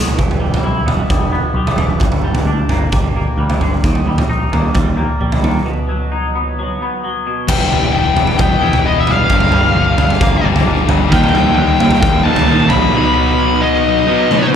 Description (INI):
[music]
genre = quiet-loud alternative rock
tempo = 132 BPM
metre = 4/4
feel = straight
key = E harmonic minor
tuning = A4 = 438 Hz
[part]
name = twangy electric guitar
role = arpeggios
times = 0.0-11.1 s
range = G2 to E4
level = -21 LUFS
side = left 1 dB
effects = analog chorus
[part]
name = growling picked electric bass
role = bass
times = 0.0-12.9 s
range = E1 to D#2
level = -18 LUFS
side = equal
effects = overdrive
[part]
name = raw garage drum kit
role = drums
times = 0.1-14.4 s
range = crash cymbal, kick drum, toms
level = -16 LUFS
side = right 1 dB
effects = none
[part]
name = high-gain lead guitar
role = melody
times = 7.5-14.5 s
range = D#5 to B5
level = -16 LUFS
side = left 3 dB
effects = distortion
[part]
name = thick fuzz guitar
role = riff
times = 7.5-14.6 s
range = G2 to E4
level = -17 LUFS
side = left 10 dB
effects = distortion
[part]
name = raw garage guitar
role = riff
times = 11.1-14.6 s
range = B2 to D#4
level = -17 LUFS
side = right 11 dB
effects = overdrive
[sound]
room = moderate large studio reverb, RT60 1.0 s, small room ambience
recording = none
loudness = -12 LUFS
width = side -8 dB against mid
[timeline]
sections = 0.0-7.5 A section; 7.5-14.6 B section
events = drum fill 0.0, 14.3; break 5.7-7.5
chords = 0.2 Em; 2.0 Gm; 3.8 D#; 5.7 B; 7.5 Em; 9.3 Gm; 11.1 D#; 12.9 B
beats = | 0.19 0.64 1.10 1.56 | 2.01 2.47 2.93 3.38 | 3.84 4.30 4.75 5.21 | 5.66 6.12 6.58 7.03 | 7.49 7.94 8.40 8.85 | 9.31 9.76 10.22 10.67 | 11.13 11.58 12.04 12.49 | 12.95 13.40 13.86 14.31